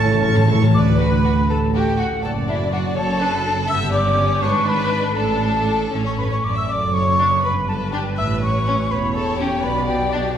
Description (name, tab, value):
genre	quick classical-period movement for symphony orchestra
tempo	81 BPM (dotted quarters)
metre	6/8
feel	rubato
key	D major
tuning	A4 = 440 Hz
part	clear chamber violin section	melody	0.0-10.2 s	B3 to C#6	-29 LUFS	left 3 dB	none
part	clear oboe	second line	0.0-0.5 s	A5	-25 LUFS	right 4 dB	none
part	rich chamber violin section	second line	0.0-10.4 s	E4 to A5	-27 LUFS	left 2 dB	none
part	silver concert flute	second line	0.0-10.4 s	E5 to E6	-23 LUFS	left 1 dB	none
part	rich chamber viola section	accompaniment	0.0-10.4 s	C#4 to D5	-27 LUFS	equal	none
part	warm bassoon	accompaniment	0.0-0.5 s	C#4	-31 LUFS	right 5 dB	none
part	mellow French horn section	sustained chords	0.0-0.5 s	A4	-26 LUFS	equal	none
part	warm chamber cello section	bass	0.0-10.2 s	D2 to B2	-23 LUFS	right 2 dB	none
part	warm chamber double bass section	bass	0.0-10.2 s	E1 to D2	-23 LUFS	right 2 dB	none
part	timpani	percussion	0.0-0.7 s	A2	-20 LUFS	left 2 dB	none
room	wet scoring stage reverb, RT60 1.5 s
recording	heard from further back in the room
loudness	-16 LUFS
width	side -9 dB against mid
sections	0.7-10.4 A section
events	timpani fill 0.0-0.7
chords	0.0 A; 0.7 D; 2.2 D/F#; 3.7 G; 4.4 Bm69/G#; 5.2 D5/A; 5.9 A; 6.7 D/F#; 7.4 G; 8.2 A; 9.6 G/B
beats	| 0.74 1.50 | 2.24 2.96 | 3.69 4.42 | 5.17 5.92 | 6.68 7.43 | 8.18 8.91 | 9.63